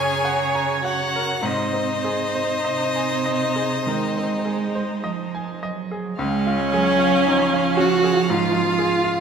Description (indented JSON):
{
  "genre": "classical, slow romantic movement for piano quintet",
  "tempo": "49-59 BPM",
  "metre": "4/4",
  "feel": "rubato",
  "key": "Db major",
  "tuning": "A4 = 440 Hz",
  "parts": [
    { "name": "warm violin", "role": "melody", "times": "0.0-9.2 s", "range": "Db5 to Ab5", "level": "-26 LUFS", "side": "left 6 dB", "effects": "none" },
    { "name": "rich cello", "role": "second line", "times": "0.0-9.2 s", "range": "C3 to Ab3", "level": "-26 LUFS", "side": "right 7 dB", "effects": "none" },
    { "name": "rich violin", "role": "second line", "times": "0.0-9.2 s", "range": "Eb4 to F5", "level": "-30 LUFS", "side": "left 2 dB", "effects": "none" },
    { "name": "bright grand piano", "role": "accompaniment", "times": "0.0-9.2 s", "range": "Db2 to Bb5", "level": "-27 LUFS", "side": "left 1 dB", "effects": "none" },
    { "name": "warm viola", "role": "accompaniment", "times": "0.0-9.2 s", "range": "Db4 to Db5", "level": "-23 LUFS", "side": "right 2 dB", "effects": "none" }
  ],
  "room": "wet recital hall reverb, RT60 1.7 s",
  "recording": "none",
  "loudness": "-19 LUFS",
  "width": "side -7 dB against mid",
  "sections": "0.0-6.2 A section; 6.2-9.2 B section",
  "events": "none",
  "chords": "0.0 Gb; 1.4 Ab; 6.2 Db",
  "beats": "0.26 | 1.44 2.65 3.85 5.03 | 6.18 7.25 8.29"
}